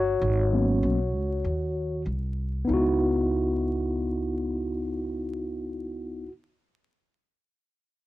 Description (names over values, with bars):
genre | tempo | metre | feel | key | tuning
hip hop, jazz-hop | 97 BPM | 4/4 | swing 64% on 16ths | C# minor | A4 = 440 Hz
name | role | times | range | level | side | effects
mellow tine electric piano | accompaniment | 0.0-6.3 s | F#3 to C#5 | -26 LUFS | equal | slow stereo tremolo
upright bass | bass | 0.0-6.3 s | G1 to D#2 | -29 LUFS | equal | none
room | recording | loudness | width
moderate studio reverb, RT60 0.6 s | home recording on cassette, vinyl crackle | -25 LUFS | side -16 dB against mid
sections
0.0-2.7 A section; 2.7-5.2 B section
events
tine electric piano solo 0.0-2.7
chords
0.2 G#m11; 2.7 C#m11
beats
| 0.21 0.83 1.45 2.07 | 2.69 3.31 3.92 4.54